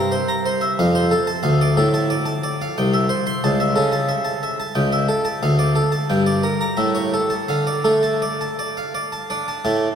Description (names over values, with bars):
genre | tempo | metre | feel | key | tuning
classical, baroque-style suite movement for harpsichord | 82-92 BPM | 3/4 | rubato | D minor | A4 = 438 Hz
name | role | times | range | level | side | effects
harpsichord | solo | 0.0-10.0 s | C2 to C6 | -17 LUFS | equal | none
room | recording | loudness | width
wet cathedral reverb, RT60 5.5 s | in a vast, echoing space | -17 LUFS | side -8 dB against mid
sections
0.0-9.6 A section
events
none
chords
0.0 C7; 0.8 F; 1.4 Dm; 2.8 C; 3.4 A/C#; 4.7 A7/C#; 5.4 Dm; 6.1 Gm; 6.8 A; 7.5 Dm